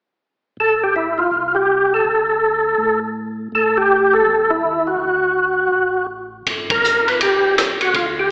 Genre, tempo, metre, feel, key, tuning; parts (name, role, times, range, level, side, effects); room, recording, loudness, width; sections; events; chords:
soul jazz organ trio; 163 BPM; 4/4; swing 64% on 8ths; G major; A4 = 439 Hz
percussive tonewheel organ; melody; 0.6-8.3 s; E4 to B4; -17 LUFS; equal; slow rotary speaker, overdrive, chorus vibrato
mellow tonewheel organ; bass; 0.6-8.3 s; G1 to A2; -36 LUFS; equal; overdrive, chorus vibrato, slow rotary speaker
vintage drum kit; drums; 6.5-8.1 s; hi-hat, kick drum, ride cymbal, rim click; -22 LUFS; equal
wet recital hall reverb, RT60 1.4 s; recorded in a church or concert hall, AM radio sound; -17 LUFS; mono
0.6-6.5 A section; 6.5-8.3 B section
band accent 6.7
0.6 Am7; 2.1 D5; 3.5 A5; 5.0 D; 6.5 G